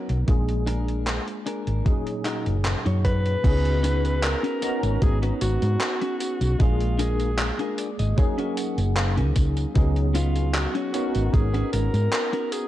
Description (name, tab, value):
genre	vaporwave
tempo	76 BPM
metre	4/4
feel	straight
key	F# major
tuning	A4 = 442 Hz
part	barky tine electric piano	accompaniment	0.0-12.7 s	A#2 to A#5	-30 LUFS	equal	medium stereo tremolo, ensemble chorus, vintage 12-bit sampler grit, analog delay
part	clean electric guitar	riff	0.0-12.7 s	B3 to G#5	-32 LUFS	left 2 dB	wide subtle chorus, analog delay
part	hollow-body short-scale fingered electric bass	bass	0.1-12.1 s	F#1 to G#2	-23 LUFS	equal	none
part	gated 80s digital drum machine	drums	0.1-12.7 s	crash cymbal, handclaps, hi-hat, tambourine	-30 LUFS	equal	gated reverb, overdrive, vintage 12-bit sampler grit
part	electronic kick drum	drums	0.3-11.5 s	none	-21 LUFS	equal	overdrive, vintage 12-bit sampler grit
part	clear alto saxophone	melody	3.0-12.7 s	E#4 to B4	-29 LUFS	equal	tape echo
room	light reverb, digital ambience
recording	dark, warm production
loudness	-21 LUFS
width	side -13 dB against mid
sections	0.0-3.4 A section; 3.4-12.7 B section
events	clean electric guitar fill 7.4-9.8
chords	0.3 A#7; 1.9 F#6; 3.4 C#9sus4; 4.6 G#m11; 6.6 A#7; 8.2 F#6; 9.8 C#9sus4; 10.9 G#m11